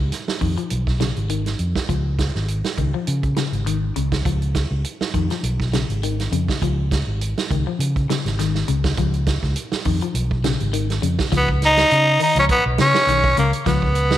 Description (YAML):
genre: afrobeat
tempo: 102 BPM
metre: 4/4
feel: swing 55% on 16ths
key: Db mixolydian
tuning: A4 = 440 Hz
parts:
  - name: fingered electric bass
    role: bass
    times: 0.0-14.2 s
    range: Ab1 to Db3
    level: -21 LUFS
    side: equal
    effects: none
  - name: vintage drum kit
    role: drums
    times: 0.1-14.2 s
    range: hi-hat, kick drum, snare drum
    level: -24 LUFS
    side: right 3 dB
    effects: none
  - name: electric guitar at the edge of break-up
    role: arpeggios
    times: 0.4-13.9 s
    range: Db3 to F3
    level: -26 LUFS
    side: left 8 dB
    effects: phaser
  - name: growling tenor saxophone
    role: melody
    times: 11.4-14.2 s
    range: Bb3 to Eb4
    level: -16 LUFS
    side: equal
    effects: none
room: moderate plate reverb, RT60 1.9 s, studio reverb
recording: 1960s-style stereo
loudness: -18 LUFS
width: side -12 dB against mid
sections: 0.0-11.3 A section; 11.3-14.2 B section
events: none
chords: 0.0 Db; 11.3 Db7